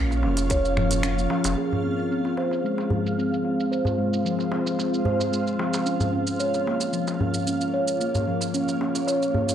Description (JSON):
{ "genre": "organic downtempo", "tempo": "112 BPM", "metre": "4/4", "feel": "straight", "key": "F minor", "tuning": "A4 = 439 Hz", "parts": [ { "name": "granular cloud pad", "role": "sustained chords", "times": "0.0-9.5 s", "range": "Ab3 to F5", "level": "-29 LUFS", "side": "equal", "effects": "built-in reverb, sidechain pumping" }, { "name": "steel tongue drum", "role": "arpeggios", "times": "0.0-9.5 s", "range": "F3 to Db5", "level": "-24 LUFS", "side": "equal", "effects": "low-pass filter, tape echo" }, { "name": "warm sub bass", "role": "bass", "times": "0.0-1.6 s", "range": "F1 to Bb1", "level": "-25 LUFS", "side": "equal", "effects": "sidechain pumping" }, { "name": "organic electronic drum kit", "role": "drums", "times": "0.1-9.5 s", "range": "finger snaps, hi-hat, shaker", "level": "-32 LUFS", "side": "right 3 dB", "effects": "low-pass filter on hats, studio reverb, low-pass filter on perc, low-pass filter on snare" }, { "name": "darbuka", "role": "percussion", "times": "0.1-9.5 s", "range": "none", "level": "-31 LUFS", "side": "left 1 dB", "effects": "none" }, { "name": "electronic kick drum", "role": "drums", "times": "0.5-0.6 s", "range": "none", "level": "-26 LUFS", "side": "equal", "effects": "studio reverb" }, { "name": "bronze singing bowl", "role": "texture", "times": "1.6-9.5 s", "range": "Ab4", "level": "-37 LUFS", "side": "right 7 dB", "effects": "none" } ], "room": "light reverb, small room ambience", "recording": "dry, gritty hardware recording", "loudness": "-22 LUFS", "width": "side -9 dB against mid", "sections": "0.0-1.6 A section; 1.6-9.5 B section", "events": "kick drops out 1.0-1.6; filter sweep on steel tongue drum 1.6-9.5; filter sweep on ambient pad 1.6-9.5", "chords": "0.0 Bbm; 1.6 Fm; 5.9 Bbm" }